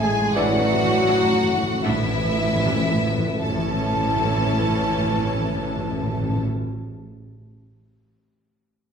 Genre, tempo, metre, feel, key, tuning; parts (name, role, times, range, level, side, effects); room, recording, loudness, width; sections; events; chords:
classical, slow romantic movement for symphony orchestra; 41 BPM; 4/4; rubato; A major; A4 = 441 Hz
warm studio violin section; melody; 0.0-6.4 s; E5 to A5; -29 LUFS; left 2 dB
hollow small flute group; second line; 0.0-6.4 s; E5 to A5; -29 LUFS; right 1 dB
rich studio violin section; second line; 0.0-6.4 s; E4 to A4; -30 LUFS; equal
dark French horn section; sustained chords; 0.0-6.4 s; E3 to A3; -27 LUFS; left 2 dB
rich studio double bass section; bass; 0.0-6.4 s; A1; -29 LUFS; right 3 dB
warm studio cello section; bass; 0.0-6.4 s; A2; -28 LUFS; right 2 dB
timpani; percussion; 0.0-6.4 s; A2; -26 LUFS; left 1 dB
clear clarinet; second line; 0.4-6.4 s; C#5 to D5; -32 LUFS; left 3 dB
mellow bassoon; accompaniment; 0.4-6.4 s; E3; -30 LUFS; equal
rich studio viola section; accompaniment; 0.4-6.4 s; C#4 to E4; -33 LUFS; right 2 dB
wet recital hall reverb, RT60 1.6 s; recorded in a church or concert hall; -19 LUFS; side -7 dB against mid
0.0-3.4 A section; 3.4-8.9 B section
timpani fill 0.0-3.4; slowing down 0.0-3.4
0.0 E5/A; 3.4 A